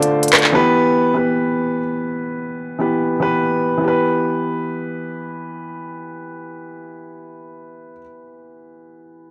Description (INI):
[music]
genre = hip hop, drill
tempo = 146 BPM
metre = 4/4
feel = half-time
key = E phrygian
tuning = A4 = 440 Hz
[part]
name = dark baby grand piano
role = accompaniment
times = 0.0-9.3 s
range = D3 to D5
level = -21 LUFS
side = equal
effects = none
[part]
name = drill drum kit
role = drums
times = 0.0-0.5 s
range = handclaps, hi-hat, rim click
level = -16 LUFS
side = equal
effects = none
[sound]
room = light reverb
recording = dry, gritty hardware recording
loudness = -18 LUFS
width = mono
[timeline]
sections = 0.5-3.8 A section; 3.8-7.1 B section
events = break 0.0-0.5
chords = 0.0 Dm; 0.5 Em